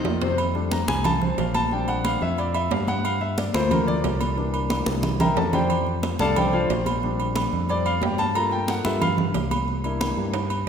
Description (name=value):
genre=Afro-Cuban jazz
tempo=181 BPM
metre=4/4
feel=straight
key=F major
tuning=A4 = 440 Hz
part: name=clear concert grand piano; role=accompaniment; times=0.0-10.3 s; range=C3 to Bb5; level=-26 LUFS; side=left 3 dB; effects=none
part: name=fingered electric bass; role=bass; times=0.0-10.6 s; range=Bb1 to G2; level=-27 LUFS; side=equal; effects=none
part: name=congas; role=percussion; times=0.0-10.7 s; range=none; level=-27 LUFS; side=equal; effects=none
part: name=timbales and agogo bells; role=percussion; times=0.1-10.7 s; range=none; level=-28 LUFS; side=right 5 dB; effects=none
room=wet concert hall reverb, RT60 1.7 s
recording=recorded in a church or concert hall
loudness=-21 LUFS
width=side -7 dB against mid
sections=0.4-10.7 A section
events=grand piano solo 0.4-10.7; drum fill 4.7-5.7, 10.3-10.7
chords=0.4 F69; 1.7 Bb69; 3.0 Gm7; 5.7 F69; 8.4 Gm7; 9.7 C7